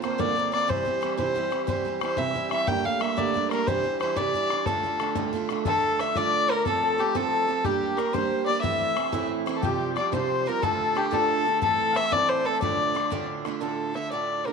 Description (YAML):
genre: celtic folk, Celtic jig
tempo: 121 BPM (dotted quarters)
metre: 6/8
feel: straight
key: D minor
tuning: A4 = 440 Hz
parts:
  - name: dark fiddle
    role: melody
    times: 0.0-14.5 s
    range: G4 to G5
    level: -26 LUFS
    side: left 2 dB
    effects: none
  - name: picked acoustic archtop guitar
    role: accompaniment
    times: 0.0-14.5 s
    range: D2 to G4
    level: -29 LUFS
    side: right 10 dB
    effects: none
  - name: bodhran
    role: percussion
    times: 0.0-13.5 s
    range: none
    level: -33 LUFS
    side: left 8 dB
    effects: none
  - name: mellow accordion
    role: second line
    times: 5.7-13.3 s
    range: G4 to F5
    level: -30 LUFS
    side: left 10 dB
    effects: none
room: moderate plate reverb, RT60 2.8 s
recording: 1960s-style stereo with parts hard left and right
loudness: -23 LUFS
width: side -5 dB against mid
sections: 0.0-5.7 A section; 5.7-13.6 B section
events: none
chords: 0.0 Bbadd9; 0.7 C; 2.7 Gmadd9; 3.7 Cadd9; 4.7 Dm; 6.6 F; 7.6 Gm; 8.6 Am; 9.6 Csus4; 10.6 Dm; 11.6 Am; 12.6 Dm